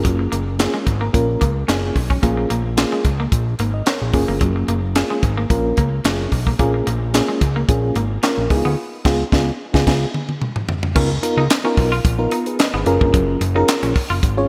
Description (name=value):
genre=early-eighties boogie funk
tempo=110 BPM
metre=4/4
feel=straight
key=F# major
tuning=A4 = 439 Hz
part: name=FM electric piano with tremolo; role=accompaniment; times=0.0-14.5 s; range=A#3 to G#5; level=-24 LUFS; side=equal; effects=none
part: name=electric guitar at the edge of break-up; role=riff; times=0.0-14.2 s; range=F#3 to E#4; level=-29 LUFS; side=equal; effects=lush chorus
part: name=fat analog bass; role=bass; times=0.0-14.5 s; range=F#1 to D2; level=-23 LUFS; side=equal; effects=none
part: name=tight funk drum kit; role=drums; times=0.0-14.4 s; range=crash cymbal, handclaps, hi-hat, kick drum, snare drum, toms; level=-22 LUFS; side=equal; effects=gated reverb
room=moderate lush hall reverb, RT60 2.0 s, small room ambience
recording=bright 1980s-style digital production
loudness=-18 LUFS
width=mono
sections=0.0-11.0 A section; 11.0-14.5 B section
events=FM electric piano fill 1.4-2.2; band accent 8.8-11.0; drum fill 9.9-11.0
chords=0.0 F#maj7; 2.2 A#m7; 4.1 F#maj7; 6.6 A#m7; 8.5 C#7; 11.0 C#13; 12.9 F#maj9